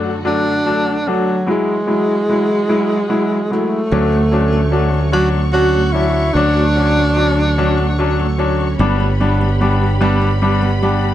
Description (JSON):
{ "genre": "six-eight pop ballad", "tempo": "49 BPM (dotted quarters)", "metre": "6/8", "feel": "straight", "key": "unclear", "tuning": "A4 = 440 Hz", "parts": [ { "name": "clear concert grand piano", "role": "accompaniment", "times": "0.0-11.1 s", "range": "F#3 to E4", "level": "-18 LUFS", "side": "left 2 dB", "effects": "none" }, { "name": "warm studio string section", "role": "sustained chords", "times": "0.0-11.1 s", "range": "F#2 to C#6", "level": "-26 LUFS", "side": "left 2 dB", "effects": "none" }, { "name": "breathy tenor saxophone", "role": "melody", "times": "0.3-8.4 s", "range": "F#3 to F#4", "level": "-17 LUFS", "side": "right 1 dB", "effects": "none" }, { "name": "fingerpicked steel-string acoustic guitar", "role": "arpeggios", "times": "3.9-11.1 s", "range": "F#3 to G4", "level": "-24 LUFS", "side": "right 8 dB", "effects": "none" }, { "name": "fingered electric bass", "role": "bass", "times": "3.9-11.1 s", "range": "G1 to D2", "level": "-16 LUFS", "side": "equal", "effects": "none" } ], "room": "light reverb, small room ambience", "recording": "dark, warm production, nothing above 10.8 kHz", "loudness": "-13 LUFS", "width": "side -12 dB against mid", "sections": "0.0-3.9 A section; 3.9-11.1 B section", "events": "none", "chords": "0.0 D/F#; 1.5 Eadd9; 3.9 Dmaj7; 8.8 G" }